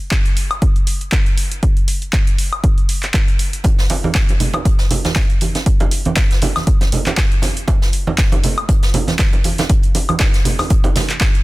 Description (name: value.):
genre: house.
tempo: 119 BPM.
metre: 4/4.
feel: swing 56% on 16ths.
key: none.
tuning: none.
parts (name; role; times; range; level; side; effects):
electronic kick drum; drums; 0.1-11.3 s; none; -15 LUFS; equal; none.
punchy analog drum machine; drums; 0.1-11.4 s; handclaps, hi-hat, woodblock; -22 LUFS; equal; overdrive.
congas; percussion; 3.6-11.3 s; none; -21 LUFS; right 4 dB; none.
jazz brush drum kit; drums; 3.7-11.3 s; hi-hat, snare drum; -27 LUFS; right 2 dB; high-pass filter on hats, soft clipping on snare, high-pass filter on snare, high-pass filter on room.
room: studio reverb.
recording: dense, heavily limited modern master.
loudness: -14 LUFS.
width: side -20 dB against mid.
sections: 0.0-11.4 A section.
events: none.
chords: none.